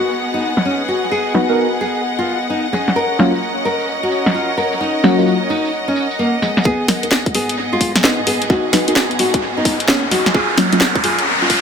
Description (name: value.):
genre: UK garage, two-step garage.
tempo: 130 BPM.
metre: 4/4.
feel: swing 64% on 16ths.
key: G# dorian.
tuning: A4 = 441 Hz.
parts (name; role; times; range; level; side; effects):
nylon-string guitar; melody; 0.0-11.6 s; G#3 to A#4; -20 LUFS; left 1 dB; tape echo.
rich symphonic string section; texture; 0.0-11.6 s; B3 to F#5; -21 LUFS; equal; sidechain pumping.
garage drum kit; drums; 0.1-11.6 s; hi-hat, snare drum, tambourine; -17 LUFS; equal; low-pass filter on snare, studio reverb, low-pass filter on hats, low-pass filter on perc, dub echo.
deep mellow chord stab; stabs; 1.3-10.8 s; F#3 to B4; -19 LUFS; equal; chorus, tape echo.
soft dub sub bass; bass; 6.7-11.6 s; G#1 to G#2; -40 LUFS; equal; none.
electronic kick drum; drums; 6.7-11.6 s; none; -18 LUFS; equal; high-pass filter on kick, studio reverb.
riser; sound effects; 7.7-11.6 s; none; -20 LUFS; right 1 dB; none.
room: moderate plate reverb, RT60 1.1 s.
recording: echo-heavy mix.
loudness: -14 LUFS.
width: side -7 dB against mid.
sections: 0.0-6.7 A section; 6.7-11.6 B section.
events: build-up 6.7-11.6; riser 7.7-11.6.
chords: 0.0 G#m7; 2.7 D#m7; 6.4 G#m7; 10.1 D#m7.